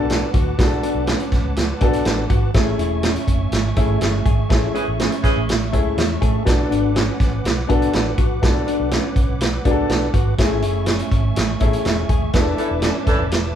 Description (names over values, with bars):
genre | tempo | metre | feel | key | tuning
uptempo 1960s-style soul | 122 BPM | 4/4 | straight | A major | A4 = 440 Hz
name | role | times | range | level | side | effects
clear upright piano | accompaniment | 0.0-12.9 s | A3 to C#5 | -23 LUFS | left 2 dB | none
bright tonewheel organ | sustained chords | 0.0-13.6 s | A3 to D6 | -30 LUFS | right 4 dB | chorus vibrato
vintage hollow-body jazz guitar | riff | 0.0-13.3 s | C#4 to G#4 | -27 LUFS | left 6 dB | none
vintage muted fingered electric bass | bass | 0.0-13.6 s | D#1 to A2 | -23 LUFS | right 1 dB | none
vintage drum kit | drums | 0.1-13.4 s | hi-hat, kick drum, snare drum | -19 LUFS | right 1 dB | none
clear saxophone section | second line | 4.7-5.4, 12.6-13.2 s | E3 to A4 | -24 LUFS | right 2 dB | none
room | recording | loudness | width
light reverb | band playing live in one room | -16 LUFS | side -10 dB against mid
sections
0.0-13.6 A section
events
band accent 4.5-6.5, 12.3-13.6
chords
0.0 Bm7; 2.5 Amaj7; 6.5 Bm7; 10.4 Amaj7; 12.3 E7sus4